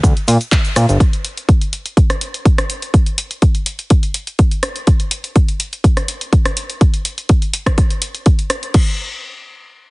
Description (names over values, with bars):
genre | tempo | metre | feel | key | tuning
filtered disco house | 124 BPM | 4/4 | straight | unclear | A4 = 440 Hz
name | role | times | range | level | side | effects
fat analog bass | bass | 0.0-1.0 s | G1 to Bb2 | -12 LUFS | equal | sidechain pumping, low-pass filter
electronic kick drum | drums | 0.0-8.8 s | none | -12 LUFS | equal | none
punchy analog drum machine | drums | 0.0-8.8 s | crash cymbal, handclaps, hi-hat, rim click, shaker | -21 LUFS | equal | none
room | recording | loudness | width
digital ambience | heavily compressed radio sound, multiband compression, nothing above 10.8 kHz | -13 LUFS | side -25 dB against mid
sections
0.0-8.7 A section; 8.7-9.9 B section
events
none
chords
none